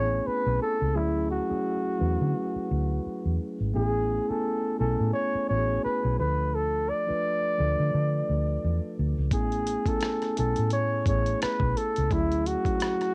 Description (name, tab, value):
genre	R&B, neo-soul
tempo	86 BPM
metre	4/4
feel	swing 56% on 16ths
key	A major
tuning	A4 = 440 Hz
part	breathy flugelhorn	melody	0.0-13.1 s	E4 to D5	-31 LUFS	equal	cassette tape
part	mellow tine electric piano	accompaniment	0.0-13.1 s	F3 to G#5	-34 LUFS	equal	cassette tape
part	vintage muted fingered electric bass	bass	0.0-12.7 s	G#1 to D3	-30 LUFS	equal	none
part	dusty soul sampler-style drum kit	drums	9.3-13.1 s	hi-hat, kick drum, rim click	-32 LUFS	equal	cassette tape
room	light reverb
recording	home recording on cassette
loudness	-27 LUFS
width	mono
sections	0.0-13.1 A section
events	none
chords	0.0 Amaj9; 0.9 Dmaj9#11; 3.7 Amaj9; 6.2 Dm; 9.3 Amaj9; 12.1 Dmaj9#11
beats	0.25 | 0.95 1.64 2.34 3.04 | 3.74 4.43 5.13 5.83 | 6.53 7.22 7.92 8.62 | 9.32 10.02 10.71 11.41 | 12.11 12.81